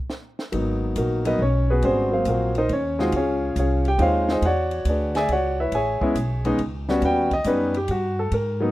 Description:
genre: jazz piano trio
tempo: 139 BPM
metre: 3/4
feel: swing 68% on 8ths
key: G# minor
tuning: A4 = 440 Hz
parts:
  - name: compact cocktail drum kit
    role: drums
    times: 0.1-8.5 s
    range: hi-hat, kick drum, ride cymbal, snare drum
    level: -35 LUFS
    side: equal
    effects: none
  - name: warm concert grand piano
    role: melody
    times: 0.5-8.7 s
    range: F#3 to G#5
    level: -21 LUFS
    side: equal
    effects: none
  - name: upright bass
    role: bass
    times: 0.5-8.7 s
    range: G#1 to G#2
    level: -25 LUFS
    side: equal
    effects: none
room: light reverb, small room ambience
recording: rough home demo mix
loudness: -20 LUFS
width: side -16 dB against mid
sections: 0.5-8.7 A section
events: grand piano solo 0.5-8.7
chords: 0.0 N.C.; 0.5 G#m9; 1.8 G#13; 3.1 C#maj9; 4.4 E13; 5.7 Amaj9; 7.0 D#7alt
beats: 0.10 | 0.53 0.96 1.40 | 1.83 2.26 2.69 | 3.13 3.56 3.99 | 4.42 4.86 5.29 | 5.72 6.16 6.59 | 7.02 7.46 7.89 | 8.32

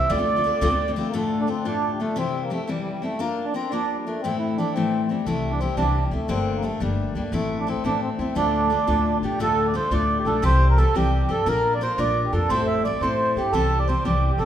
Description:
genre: celtic folk, Celtic jig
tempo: 116 BPM (dotted quarters)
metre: 6/8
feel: straight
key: D minor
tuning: A4 = 440 Hz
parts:
  - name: mellow accordion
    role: melody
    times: 0.0-14.5 s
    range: G3 to E5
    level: -24 LUFS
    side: right 2 dB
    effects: none
  - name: picked steel-string acoustic guitar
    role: accompaniment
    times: 0.0-14.5 s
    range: D2 to Bb4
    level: -25 LUFS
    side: left 3 dB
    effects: none
  - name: upright bass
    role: bass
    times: 0.1-1.0, 5.3-14.5 s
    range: G1 to G2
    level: -25 LUFS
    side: equal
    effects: none
room: wet recital hall reverb, RT60 1.5 s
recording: minimal, uncompressed stereo recording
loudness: -20 LUFS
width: side -10 dB against mid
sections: 0.0-1.1 A section; 1.1-9.4 B section; 9.4-14.5 B section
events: none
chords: 0.1 Dm7; 1.1 Dm; 2.2 C; 3.2 Bb; 4.2 Am; 5.3 C; 6.3 Gmadd9; 7.3 Am; 8.4 Dm; 10.4 C; 11.5 Bb; 12.5 Am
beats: | 0.10 0.61 | 1.13 1.65 | 2.16 2.68 | 3.20 3.71 | 4.23 4.75 | 5.26 5.78 | 6.29 6.81 | 7.33 7.84 | 8.36 8.88 | 9.39 9.91 | 10.43 10.95 | 11.46 11.98 | 12.49 13.01 | 13.53 14.04

